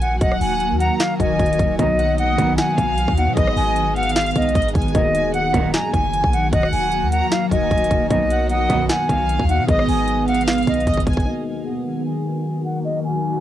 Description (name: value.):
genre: hip hop, trap.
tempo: 152 BPM.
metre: 4/4.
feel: half-time.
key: Eb minor.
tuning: A4 = 440 Hz.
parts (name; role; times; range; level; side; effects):
reedy concert flute; melody; 0.0-13.4 s; Eb5 to Ab5; -22 LUFS; equal; low-pass filter, cassette tape.
warm studio violin section; second line; 0.0-11.3 s; D#5 to Bb5; -27 LUFS; right 2 dB; cassette tape, tape echo.
dark grand piano; accompaniment; 0.0-13.4 s; B2 to Cb5; -30 LUFS; left 8 dB; low-pass filter, cassette tape.
granular cloud pad; sustained chords; 0.0-13.4 s; Eb3 to Ab4; -23 LUFS; equal; built-in reverb, low-pass filter, cassette tape.
clean 808-style bass; bass; 0.0-11.2 s; Eb1 to B2; -23 LUFS; equal; none.
trap drum kit; drums; 0.0-11.3 s; hi-hat, kick drum, rim click, snare drum; -22 LUFS; equal; vintage 12-bit sampler grit.
warm chamber string section; stabs; 1.8-9.0 s; F#2 to D#3; -27 LUFS; right 6 dB; cassette tape, tape echo.
room: light reverb.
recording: home recording on cassette.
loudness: -16 LUFS.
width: side -12 dB against mid.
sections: 0.0-11.3 A section; 11.3-13.4 B section.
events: drum fill 10.9-11.3; filter sweep 11.3-13.4.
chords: 0.0 Ebm; 1.8 B; 3.4 Abm; 4.9 Ebm; 8.1 B; 9.7 Abm; 11.3 Ebm.